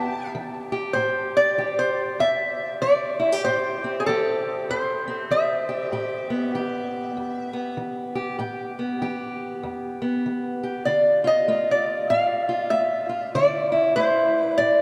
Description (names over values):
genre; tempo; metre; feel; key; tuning
acoustic country blues, solo or duo; 97 BPM; 4/4; swing 60% on 8ths; A minor; A4 = 440 Hz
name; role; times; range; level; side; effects
lap resonator guitar; melody; 0.0-14.8 s; G#4 to A5; -24 LUFS; equal; none
fingerpicked steel-string acoustic guitar; accompaniment; 0.0-14.8 s; E2 to G4; -28 LUFS; equal; none
room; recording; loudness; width
wet cathedral reverb, RT60 6.2 s; in a vast, echoing space; -24 LUFS; mono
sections
0.9-14.8 A section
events
none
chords
0.0 A5; 0.9 Am9; 10.9 Dmadd9